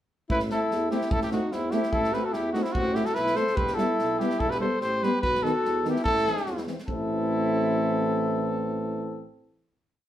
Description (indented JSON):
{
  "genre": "balkan folk, Balkan brass band",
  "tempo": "146 BPM",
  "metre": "2/4",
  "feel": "straight",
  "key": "A dorian sharp4",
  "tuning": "A4 = 440 Hz",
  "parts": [
    { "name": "warm cornet", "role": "melody", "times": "0.3-9.3 s", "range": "E4 to C5", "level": "-28 LUFS", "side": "equal", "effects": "none" },
    { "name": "mellow alto saxophone", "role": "second line", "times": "0.3-9.3 s", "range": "C4 to A4", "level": "-30 LUFS", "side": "left 1 dB", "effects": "none" },
    { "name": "warm tuba", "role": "bass", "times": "0.3-9.3 s", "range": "E1 to E2", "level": "-32 LUFS", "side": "equal", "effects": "none" },
    { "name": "natural country drum kit", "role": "percussion", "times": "0.3-7.1 s", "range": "kick drum, snare drum", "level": "-34 LUFS", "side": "equal", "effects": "none" },
    { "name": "warm French horn", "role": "accompaniment", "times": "0.5-9.3 s", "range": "B3 to C4", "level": "-33 LUFS", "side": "left 4 dB", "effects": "none" },
    { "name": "warm euphonium", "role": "accompaniment", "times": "0.5-9.3 s", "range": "D#3 to A3", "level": "-33 LUFS", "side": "right 2 dB", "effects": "none" }
  ],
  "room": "wet studio reverb, RT60 0.8 s",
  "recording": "band playing live in one room",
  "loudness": "-24 LUFS",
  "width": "side -11 dB against mid",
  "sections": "0.3-6.9 A section; 6.9-8.5 final chord",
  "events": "none",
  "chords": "0.3 Am; 3.6 Em; 5.2 B; 6.0 Am",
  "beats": "| 0.30 0.71 | 1.12 1.53 | 1.94 2.35 | 2.75 3.17 | 3.58 3.99 | 4.40 4.81 | 5.22 5.64 | 6.05 6.46 | 6.87 7.29 | 7.70 8.11"
}